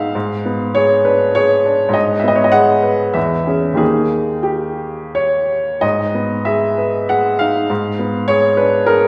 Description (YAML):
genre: classical, romantic character piece for solo piano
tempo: 80-104 BPM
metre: 3/4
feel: rubato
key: G# minor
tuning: A4 = 440 Hz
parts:
  - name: clear upright piano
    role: solo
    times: 0.0-9.1 s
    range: D#2 to F#5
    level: -16 LUFS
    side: equal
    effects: none
room: wet recital hall reverb, RT60 1.7 s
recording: none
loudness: -16 LUFS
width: mono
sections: 0.0-9.1 A section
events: none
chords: 0.1 G#dim7; 1.9 G#m; 3.2 C#m/E; 3.8 D#; 5.8 G#m; 7.7 G#dim7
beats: | 0.14 0.75 1.35 | 1.95 2.54 3.15 | 3.80 4.46 5.17 | 5.83 6.46 7.09 | 7.70 8.29 8.87